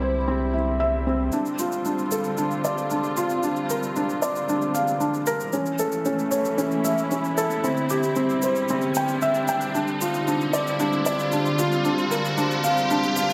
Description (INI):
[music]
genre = piano and strings electronica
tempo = 114 BPM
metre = 4/4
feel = straight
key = D minor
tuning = A4 = 440 Hz
[part]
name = muted studio string section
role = sustained chords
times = 0.0-13.3 s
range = D3 to F4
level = -30 LUFS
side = equal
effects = none
[part]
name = felt-muted upright piano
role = riff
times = 0.0-13.3 s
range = C4 to G5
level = -26 LUFS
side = equal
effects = delay
[part]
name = round analog bass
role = bass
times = 0.0-13.3 s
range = A1 to D2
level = -35 LUFS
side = equal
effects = high-pass filter
[part]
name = shaker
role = drums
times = 1.3-13.3 s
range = none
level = -38 LUFS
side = equal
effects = overdrive, high-pass filter on perc, low-pass filter on perc, high-pass filter on room, low-pass filter on room
[part]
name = riser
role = sound effects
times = 4.3-13.3 s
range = none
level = -34 LUFS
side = equal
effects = none
[sound]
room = moderate echo chamber reverb, RT60 1.7 s, studio reverb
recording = none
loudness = -24 LUFS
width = mono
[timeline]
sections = 0.0-1.3 A section; 1.3-13.3 B section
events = build-up 1.3-13.3; riser 4.3-13.3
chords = 0.0 C; 1.3 Dm; 3.4 Bb; 5.5 A; 7.6 C; 9.7 Dm; 11.9 Bb